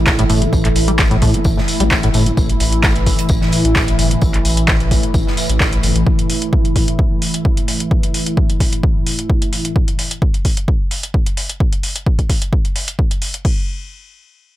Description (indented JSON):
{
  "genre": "acid house",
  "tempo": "130 BPM",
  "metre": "4/4",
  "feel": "straight",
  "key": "unclear",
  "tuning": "A4 = 439 Hz",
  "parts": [
    { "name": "lush unison pad", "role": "sustained chords", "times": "0.0-9.7 s", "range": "A2 to E4", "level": "-20 LUFS", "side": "equal", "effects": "chorus, phaser, sidechain pumping" },
    { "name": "round analog bass", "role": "bass", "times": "0.0-6.0 s", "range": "G1 to A1", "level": "-18 LUFS", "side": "equal", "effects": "sidechain pumping" },
    { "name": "deep dark ambient pad", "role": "texture", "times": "0.0-2.4 s", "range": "E4 to A5", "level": "-25 LUFS", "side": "right 3 dB", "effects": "chorus, built-in reverb, sidechain pumping" },
    { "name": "big rock drum kit", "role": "drums", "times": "0.1-5.9 s", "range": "hi-hat, snare drum, tambourine", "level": "-26 LUFS", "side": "equal", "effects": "high-pass filter on hats, high-pass filter on snare, high-pass filter on perc, high-pass filter on room" },
    { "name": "electro analog drum machine", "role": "drums", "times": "0.1-13.5 s", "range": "crash cymbal, handclaps, hi-hat", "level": "-21 LUFS", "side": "equal", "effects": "none" },
    { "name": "electronic kick drum", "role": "drums", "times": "0.1-13.5 s", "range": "none", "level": "-16 LUFS", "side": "equal", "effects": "none" },
    { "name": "acid bass, saw", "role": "riff", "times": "0.2-2.3 s", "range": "A2 to C4", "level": "-18 LUFS", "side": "equal", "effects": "tube saturation, analog chorus, digital delay" }
  ],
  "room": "little or no reverb",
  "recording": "none",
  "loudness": "-13 LUFS",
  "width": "side -14 dB against mid",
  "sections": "0.0-13.4 A section; 13.4-14.6 B section",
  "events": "fade-out on ambient pad 0.0-2.4",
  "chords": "0.0 A5; 13.4 N.C."
}